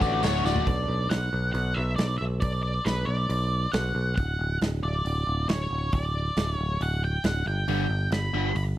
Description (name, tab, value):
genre	classic rock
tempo	137 BPM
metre	4/4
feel	straight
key	unclear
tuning	A4 = 440 Hz
part	octave-fuzz lead guitar	melody	0.0-8.6 s	D4 to B5	-30 LUFS	right 1 dB	distortion, slapback echo
part	biting overdriven guitar	riff	0.0-1.2, 7.7-8.5 s	D2 to F#4	-28 LUFS	left 2 dB	none
part	picked electric bass	bass	0.0-8.7 s	D1 to B1	-27 LUFS	equal	none
part	big rock drum kit	drums	0.0-8.7 s	crash cymbal, hi-hat, kick drum, snare drum, toms	-30 LUFS	right 1 dB	none
part	tambourine	percussion	0.0-0.6 s	none	-42 LUFS	right 9 dB	none
room	studio reverb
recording	dry, close 1970s-style studio recording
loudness	-24 LUFS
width	side -14 dB against mid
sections	0.7-8.8 A section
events	drum fill 0.5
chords	0.0 D; 0.7 Bm; 4.2 D; 7.5 G